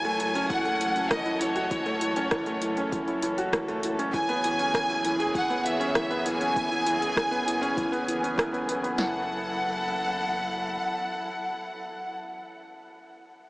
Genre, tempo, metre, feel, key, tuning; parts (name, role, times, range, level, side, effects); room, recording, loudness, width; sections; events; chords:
piano and strings electronica; 99 BPM; 4/4; straight; F# minor; A4 = 442 Hz
clear chamber violin section; melody; 0.0-12.2 s; C#5 to G#5; -29 LUFS; equal; diffuse ambient delay
dark string quartet; sustained chords; 0.0-12.2 s; E3 to A4; -34 LUFS; equal; sidechain pumping
felt-muted upright piano; riff; 0.0-13.5 s; E3 to G#4; -29 LUFS; equal; diffuse ambient delay
warm sub bass; bass; 0.0-10.8 s; F#1; -48 LUFS; equal; sidechain pumping
deep house drum kit; drums; 0.0-9.0 s; hi-hat, rim click; -34 LUFS; equal; overdrive
deep house drum kit; drums; 0.5-9.1 s; kick drum, snare drum; -33 LUFS; equal; overdrive
wet huge ambient reverb, RT60 8.3 s; dreamy mix soaked in reverb, small speaker sound; -25 LUFS; side -22 dB against mid
0.0-9.0 A section; 9.0-11.4 B section
drop 0.0-9.0
0.0 F#m7; 4.1 E6/F#; 9.0 F#m7